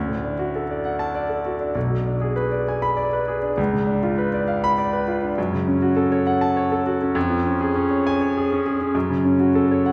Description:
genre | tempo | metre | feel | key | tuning
classical, virtuoso piano study | 100 BPM | 3/4 | rubato | F# minor | A4 = 437 Hz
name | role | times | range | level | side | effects
clear grand piano | solo | 0.0-9.9 s | B1 to B5 | -22 LUFS | equal | none
room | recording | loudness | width
wet recital hall reverb, RT60 1.7 s | heard from further back in the room | -22 LUFS | mono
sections
0.0-9.9 A section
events
none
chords
0.0 D; 1.8 G#dim/B; 3.6 C#7b9; 5.4 F#m; 7.2 C#/E#; 8.9 F#m

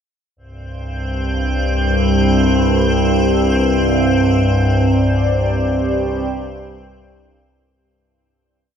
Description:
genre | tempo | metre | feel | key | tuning
dark ambient drone | free time | none | none | unclear | A4 = 442 Hz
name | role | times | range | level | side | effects
overtone-sweeping drone | drone | 0.6-7.8 s | C2 to G2 | -16 LUFS | left 1 dB | chorus, built-in reverb, phaser
icy glass pad | texture | 0.9-7.8 s | C4 to C5 | -20 LUFS | right 3 dB | chorus, built-in reverb, shimmer reverb
dark analog pad | sustained chords | 4.6-7.8 s | C4 to D5 | -21 LUFS | right 1 dB | chorus
room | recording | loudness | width
wet cathedral reverb, RT60 6.3 s | dreamy mix soaked in reverb | -14 LUFS | side -8 dB against mid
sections
0.4-7.8 A section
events
fade-out 4.1-7.8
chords
0.4 Csus2

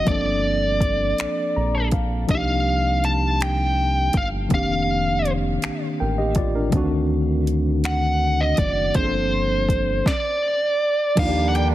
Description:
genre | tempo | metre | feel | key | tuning
slow six-eight R&B | 54 BPM (dotted quarters) | 6/8 | straight | unclear | A4 = 441 Hz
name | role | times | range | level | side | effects
smooth overdriven lead guitar | melody | 0.0-11.7 s | C5 to A5 | -22 LUFS | equal | tape echo
tine electric piano | accompaniment | 0.0-11.7 s | Eb3 to Bb5 | -25 LUFS | left 1 dB | medium stereo tremolo
round analog bass | bass | 0.0-11.7 s | F1 to Eb2 | -24 LUFS | equal | none
smooth R&B drum kit | drums | 0.1-11.7 s | crash cymbal, finger snaps, hi-hat, kick drum, snare drum | -24 LUFS | equal | overdrive
mellow horn section | stabs | 11.2-11.7 s | D3 to D4 | -27 LUFS | right 7 dB | none
room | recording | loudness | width
light reverb, digital ambience | heavily compressed radio sound | -19 LUFS | side -14 dB against mid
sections
0.0-11.2 A section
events
tine electric piano fill 1.2-2.3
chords
0.1 Gm11; 2.3 Cm11; 4.5 F13sus4; 6.7 D7b9; 9.0 Gm11; 11.2 Ebmaj9

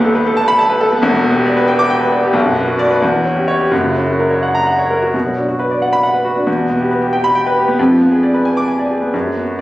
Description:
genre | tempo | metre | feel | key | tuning
classical, virtuoso piano study | 84-92 BPM (dotted quarters) | 6/8 | rubato | unclear | A4 = 438 Hz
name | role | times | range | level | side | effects
clear grand piano | solo | 0.0-9.6 s | D#1 to D6 | -12 LUFS | equal | none
room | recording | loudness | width
moderate recital hall reverb, RT60 1.4 s | recorded on a phone in the room, studio reverb | -12 LUFS | side -16 dB against mid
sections
0.0-5.1 A section; 5.1-9.6 B section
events
none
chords
0.0 B7/D#; 1.0 Em7; 2.3 Bm; 3.0 C#dim/E; 3.7 F#; 5.1 Bm; 6.5 Em; 7.8 Fdim7

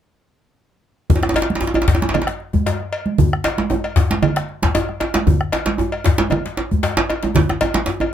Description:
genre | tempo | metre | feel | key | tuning
west african traditional, West African drum ensemble | 115 BPM | 4/4 | straight | none | none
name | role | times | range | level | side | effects
bombo | percussion | 1.1-8.1 s | none | -19 LUFS | left 2 dB | none
congas | percussion | 1.1-8.1 s | none | -21 LUFS | right 6 dB | none
djembe | percussion | 1.1-8.1 s | none | -22 LUFS | left 4 dB | none
djembe | percussion | 1.2-8.1 s | none | -20 LUFS | right 2 dB | none
cowbell | percussion | 1.4-8.1 s | none | -24 LUFS | left 2 dB | none
room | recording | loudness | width
light reverb | close, detailed microphones | -16 LUFS | side -10 dB against mid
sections
1.1-8.1 A section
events
none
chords
none

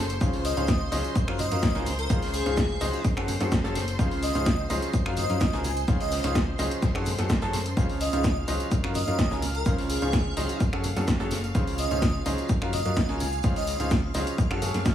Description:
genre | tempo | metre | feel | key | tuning
piano house | 127 BPM | 4/4 | straight | Db major | A4 = 440 Hz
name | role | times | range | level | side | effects
string machine, violins | sustained chords | 0.0-14.9 s | C5 to F6 | -38 LUFS | left 1 dB | ensemble chorus, sidechain pumping
modern bright fingered electric bass | bass | 0.0-14.9 s | Gb1 to Gb2 | -30 LUFS | equal | sidechain pumping
punchy analog drum machine | drums | 0.1-14.9 s | finger snaps, hi-hat, snare drum | -32 LUFS | equal | overdrive, dub echo
tambourine and congas | percussion | 0.1-14.9 s | none | -41 LUFS | right 3 dB | dub echo
clear baby grand piano | riff | 0.2-14.8 s | Db3 to A5 | -30 LUFS | equal | sidechain pumping, dub echo
electronic kick drum | drums | 0.2-14.9 s | none | -27 LUFS | equal | overdrive
open jazz drum kit | drums | 0.2-14.9 s | hi-hat, shaker, snare drum | -44 LUFS | right 1 dB | none
airy dreamy lead | melody | 0.4-13.9 s | Ab4 to Ab5 | -33 LUFS | equal | chorus, dub echo
room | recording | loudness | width
little or no reverb | echo-heavy mix, small room ambience | -23 LUFS | side -10 dB against mid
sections
0.0-14.9 A section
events
none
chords
0.2 Dbmaj7; 1.2 Gbmaj7; 1.9 Dbmaj7; 3.0 Gbmadd9; 4.0 Dbmaj7; 4.9 Gbmaj7; 5.6 Dbmaj7; 6.8 Gbmadd9; 7.8 Dbmaj7; 8.7 Gbmaj7; 9.4 Dbmaj7; 10.6 Gbmadd9; 11.5 Dbmaj7; 12.5 Gbmaj7; 13.2 Dbmaj7; 14.4 Gbmadd9

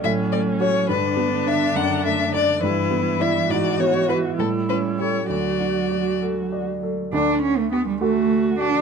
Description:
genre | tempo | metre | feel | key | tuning
quick classical-period movement for piano quartet | 68 BPM (dotted quarters) | 6/8 | rubato | D major | A4 = 445 Hz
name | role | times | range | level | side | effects
warm violin | melody | 0.0-8.8 s | F#4 to F#5 | -24 LUFS | left 7 dB | none
warm cello | second line | 0.0-8.8 s | D3 to D4 | -24 LUFS | right 4 dB | none
clear baby grand piano | accompaniment | 0.0-8.8 s | D2 to D5 | -24 LUFS | equal | none
warm viola | accompaniment | 0.0-8.8 s | C#4 to F#4 | -26 LUFS | right 2 dB | none
room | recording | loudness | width
light reverb | dark, warm production | -19 LUFS | side -6 dB against mid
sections
0.0-7.1 A section; 7.1-8.8 B section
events
none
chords
0.0 F#m/A; 0.9 G; 1.8 D/F#; 2.6 Em7/G; 3.5 E/G#; 4.4 A7; 5.3 D

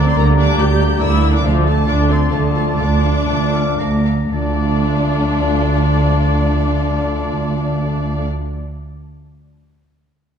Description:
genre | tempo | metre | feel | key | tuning
cinematic, heroic adventure film score | 113-143 BPM | 3/4 | straight | D minor | A4 = 436 Hz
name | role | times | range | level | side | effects
warm symphonic violin section | melody | 0.0-8.2 s | D5 to G6 | -29 LUFS | left 2 dB | none
mellow hollow silver concert flute | second line | 0.0-8.2 s | A5 to Bb5 | -29 LUFS | left 4 dB | none
warm oboe | second line | 0.0-8.2 s | D5 to Bb5 | -31 LUFS | left 1 dB | none
warm symphonic violin section | second line | 0.0-8.2 s | A4 to F5 | -30 LUFS | left 5 dB | none
warm symphonic viola section | accompaniment | 0.0-8.2 s | F3 to G4 | -23 LUFS | equal | none
mellow French horn section | sustained chords | 0.0-8.2 s | A3 to D4 | -25 LUFS | left 5 dB | none
warm trombone section | sustained chords | 0.0-8.2 s | D3 to G3 | -29 LUFS | right 3 dB | none
dark trumpet section | stabs | 0.0-8.2 s | D5 | -26 LUFS | equal | none
rich symphonic cello section | bass | 0.0-8.2 s | D2 | -21 LUFS | right 2 dB | none
warm symphonic double bass section | bass | 0.0-8.2 s | D2 | -18 LUFS | right 2 dB | none
clear clarinet | second line | 0.2-8.3 s | F4 to G4 | -30 LUFS | left 4 dB | none
timpani | percussion | 4.3-8.8 s | none | barely audible | none | none
room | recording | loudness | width
wet scoring stage reverb, RT60 1.9 s | dark, warm production | -14 LUFS | side -8 dB against mid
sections
0.0-4.3 A section; 4.3-7.5 B section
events
slowing down 0.8-4.3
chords
0.2 Gm/D; 1.5 Dm

